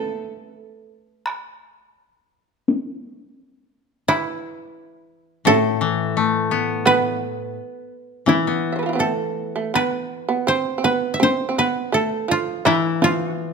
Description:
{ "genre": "japanese traditional, Japanese chamber music", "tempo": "84 BPM", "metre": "4/4", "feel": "rubato", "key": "E miyako bushi", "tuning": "A4 = 440 Hz", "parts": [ { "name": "koto", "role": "melody", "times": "0.0-13.5 s", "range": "E4 to E5", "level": "-22 LUFS", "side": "right 1 dB", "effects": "none" }, { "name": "shamisen", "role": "second line", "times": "0.0-13.5 s", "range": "E3 to E5", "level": "-23 LUFS", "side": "right 6 dB", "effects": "none" }, { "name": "taiko ensemble", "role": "percussion", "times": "1.3-13.2 s", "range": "none", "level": "-24 LUFS", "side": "left 2 dB", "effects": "none" }, { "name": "koto", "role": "accompaniment", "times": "5.5-13.5 s", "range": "A2 to B3", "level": "-22 LUFS", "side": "left 7 dB", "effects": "none" } ], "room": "moderate recital hall reverb, RT60 1.5 s", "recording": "close, detailed microphones", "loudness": "-18 LUFS", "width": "side -5 dB against mid", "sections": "0.0-9.7 A section; 9.7-13.5 B section", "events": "none", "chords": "none", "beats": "0.54 | 1.26 1.98 2.69 3.38 | 4.08 4.78 5.47 6.15 | 6.85 7.56 8.27 9.01 | 9.75 10.48 11.22 11.94 | 12.66 13.36" }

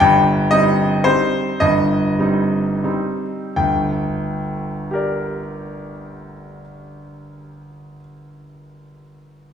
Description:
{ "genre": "classical, piano waltz", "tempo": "78-124 BPM", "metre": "3/4", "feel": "rubato", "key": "G minor", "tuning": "A4 = 440 Hz", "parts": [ { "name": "clear concert grand piano", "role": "solo", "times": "0.0-9.5 s", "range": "G1 to G5", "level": "-16 LUFS", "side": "equal", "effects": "none" } ], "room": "wet recital hall reverb, RT60 1.8 s", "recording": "recorded in a church or concert hall", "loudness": "-16 LUFS", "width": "side -8 dB against mid", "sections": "0.0-3.6 A section; 3.6-7.6 B section", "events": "slowing down 0.0-3.6", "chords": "0.0 Cm/G; 3.6 Gm", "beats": "| 0.01 0.51 1.05 | 1.61 2.19 2.85 | 3.57 4.23 4.91 | 5.59 6.25 6.94" }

